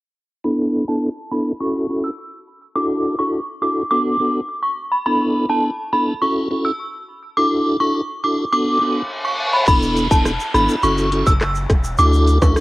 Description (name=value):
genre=dancehall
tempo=104 BPM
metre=4/4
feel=straight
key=unclear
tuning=A4 = 440 Hz
part: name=synth chime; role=melody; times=0.4-12.5 s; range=A5 to E6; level=-20 LUFS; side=equal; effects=ensemble chorus, low-pass filter, cassette tape, plate reverb
part: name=tonewheel organ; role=accompaniment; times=0.4-12.6 s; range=B3 to A4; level=-20 LUFS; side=equal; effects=chorus vibrato, stopped rotary speaker, sidechain pumping, low-pass filter, cassette tape, plate reverb
part: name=reverse cymbal and downlifter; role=sound effects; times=8.8-12.6 s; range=none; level=-26 LUFS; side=left 1 dB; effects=none
part: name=punchy sub bass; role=bass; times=9.7-12.5 s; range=E1 to D2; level=-19 LUFS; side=equal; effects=none
part: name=island pop drum kit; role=drums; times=9.7-12.6 s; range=crash cymbal, handclaps, hi-hat, kick drum, rim click, shaker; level=-18 LUFS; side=equal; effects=none
part: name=egg shaker and timbales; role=percussion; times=9.7-12.6 s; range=none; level=-28 LUFS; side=right 3 dB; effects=none
room=moderate booth ambience, RT60 0.2 s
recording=home recording on cassette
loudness=-16 LUFS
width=side -19 dB against mid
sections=0.4-9.7 A section; 9.7-12.6 B section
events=filter sweep 0.4-9.7; reverse cymbal 8.8-9.7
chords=0.4 E7sus4; 1.6 F#m7; 2.8 Dadd9; 3.9 Bm7; 5.1 E7sus4; 6.2 F#m7; 7.4 Dadd9; 8.5 Bm7; 9.7 E7sus4; 10.8 F#m7; 12.0 Dadd9